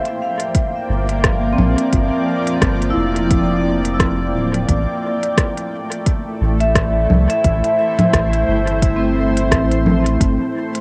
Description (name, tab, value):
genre	ambient dub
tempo	87 BPM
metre	4/4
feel	swing 57% on 16ths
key	G dorian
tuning	A4 = 440 Hz
part	granular cloud pad	sustained chords	0.0-10.8 s	F3 to G5	-24 LUFS	equal	built-in reverb, cassette tape
part	vibraphone with medium hard mallets	arpeggios	0.0-10.5 s	C4 to F5	-23 LUFS	equal	cassette tape, tape echo
part	organic electronic drum kit	drums	0.1-10.8 s	congas, hi-hat, rim click	-22 LUFS	equal	dub echo
part	electronic kick drum	drums	0.5-10.4 s	none	-21 LUFS	equal	overdrive
part	soft dub sub bass	bass	0.9-10.4 s	D1 to C2	-21 LUFS	equal	none
room	light reverb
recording	home recording on cassette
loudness	-17 LUFS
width	mono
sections	0.0-10.2 A section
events	none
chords	0.0 Gm7; 4.7 Am7; 10.2 Gm